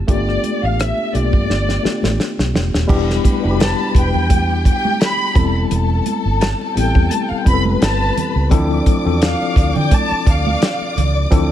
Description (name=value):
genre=lush 1970s-style soul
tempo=86 BPM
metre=4/4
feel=swing 54% on 16ths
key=D dorian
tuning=A4 = 444 Hz
part: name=tine electric piano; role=accompaniment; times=0.0-11.5 s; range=F3 to A4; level=-21 LUFS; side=left 4 dB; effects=overdrive, fast stereo tremolo
part: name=dark studio violin section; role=melody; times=0.1-11.0 s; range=D5 to B5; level=-22 LUFS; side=equal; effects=none
part: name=vintage muted fingered electric bass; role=bass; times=0.1-11.5 s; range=Eb1 to D3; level=-18 LUFS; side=right 1 dB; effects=none
part: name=warm soul drum kit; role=drums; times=0.1-11.5 s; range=crash cymbal, hi-hat, kick drum, rim click, snare drum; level=-16 LUFS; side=equal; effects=none
part: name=congas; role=percussion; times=0.1-11.5 s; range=none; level=-27 LUFS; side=right 8 dB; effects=none
part: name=warm studio string section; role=second line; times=2.9-11.5 s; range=G4 to D6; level=-25 LUFS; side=left 3 dB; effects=tape echo
room=small room ambience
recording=none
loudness=-14 LUFS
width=side -11 dB against mid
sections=0.0-2.9 A section; 2.9-11.5 B section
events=drum fill 1.5-2.9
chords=0.1 G9; 2.9 Em7; 5.4 Am9/E; 8.5 Dm9